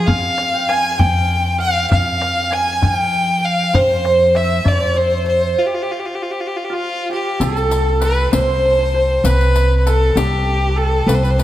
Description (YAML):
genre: Persian modal ensemble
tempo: 66 BPM (dotted quarters)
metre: 6/8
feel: straight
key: F avaz esfahan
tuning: A4 = 442 Hz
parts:
  - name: clear violin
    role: melody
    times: 0.0-11.4 s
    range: F4 to Ab5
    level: -17 LUFS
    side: left 1 dB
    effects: none
  - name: santur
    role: second line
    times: 0.0-11.4 s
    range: F4 to Ab5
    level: -22 LUFS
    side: right 2 dB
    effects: none
  - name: upright bass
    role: bass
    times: 0.0-11.4 s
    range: C2 to F3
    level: -18 LUFS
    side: equal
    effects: none
  - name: tombak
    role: percussion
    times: 0.1-4.8 s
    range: none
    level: -19 LUFS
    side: left 1 dB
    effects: none
  - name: riq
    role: percussion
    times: 7.4-11.4 s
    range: none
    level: -25 LUFS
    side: left 5 dB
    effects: none
room: moderate recital hall reverb, RT60 1.6 s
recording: none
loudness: -14 LUFS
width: side -13 dB against mid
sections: 0.0-7.4 A section; 7.4-11.4 B section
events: break 5.6-7.4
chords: none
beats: | 0.08 1.00 | 1.91 2.83 | 3.75 4.66 | 5.58 6.50 | 7.41 8.33 | 9.24 10.16 | 11.08